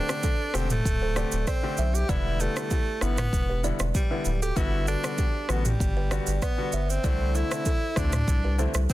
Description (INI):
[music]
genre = afrobeats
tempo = 97 BPM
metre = 4/4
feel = straight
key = G major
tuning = A4 = 440 Hz
[part]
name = breathy tenor saxophone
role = melody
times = 0.0-8.9 s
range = G3 to G4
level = -31 LUFS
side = equal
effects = digital delay
[part]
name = bright concert grand piano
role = accompaniment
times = 0.0-8.8 s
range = D3 to G4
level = -33 LUFS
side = left 4 dB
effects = none
[part]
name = buzzing kalimba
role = riff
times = 0.0-8.7 s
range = D4 to E5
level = -36 LUFS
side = right 8 dB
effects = digital delay
[part]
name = afro-pop drum kit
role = drums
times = 0.1-8.9 s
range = kick drum, rim click, shaker, toms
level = -28 LUFS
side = equal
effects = soft clipping on snare
[part]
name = saturated sub bass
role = bass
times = 0.5-8.9 s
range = D1 to D2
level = -27 LUFS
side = equal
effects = none
[sound]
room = small room ambience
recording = dense, heavily limited modern master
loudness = -24 LUFS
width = side -16 dB against mid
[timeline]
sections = 0.0-8.9 A section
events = none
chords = 0.0 D7sus4; 2.1 Em7; 4.6 Gmaj7; 7.0 C69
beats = 0.23 0.85 1.47 | 2.09 2.71 3.33 3.95 | 4.57 5.18 5.80 6.42 | 7.04 7.66 8.28 8.89